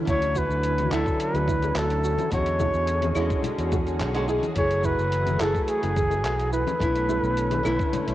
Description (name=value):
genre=sunset chillout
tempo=107 BPM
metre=4/4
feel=straight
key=F# minor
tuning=A4 = 441 Hz
part: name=nylon-string guitar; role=accompaniment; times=0.0-8.1 s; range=D3 to G#4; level=-29 LUFS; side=equal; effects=auto-pan
part: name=soft string machine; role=sustained chords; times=0.0-8.1 s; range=D3 to G#4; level=-33 LUFS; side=equal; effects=phaser, ensemble chorus
part: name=soft round pluck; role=arpeggios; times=0.0-7.9 s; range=E4 to A4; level=-35 LUFS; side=right 8 dB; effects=chorus, tape echo
part: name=breathy flugelhorn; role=melody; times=0.1-8.1 s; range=G#4 to C#5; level=-27 LUFS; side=equal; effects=cassette tape, tape echo
part: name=fingered electric bass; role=bass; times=0.1-8.1 s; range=F#1 to E2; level=-27 LUFS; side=equal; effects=none
part: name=dusty soul sampler-style drum kit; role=drums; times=0.1-8.1 s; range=claves, handclaps, hi-hat, shaker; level=-36 LUFS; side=equal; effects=cassette tape
part: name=electronic kick drum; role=drums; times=0.1-7.9 s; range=none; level=-29 LUFS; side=equal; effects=cassette tape
part: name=congas and bongos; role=percussion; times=0.8-8.0 s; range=none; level=-34 LUFS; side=left 7 dB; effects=none
room=light reverb, digital ambience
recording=home recording on cassette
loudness=-22 LUFS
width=side -14 dB against mid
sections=0.0-8.1 A section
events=none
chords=0.1 Dmaj9; 2.3 E13; 4.6 F#m9; 6.5 Bm11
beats=| 0.08 0.64 1.20 1.76 | 2.32 2.88 3.44 4.00 | 4.57 5.13 5.69 6.25 | 6.81 7.37 7.93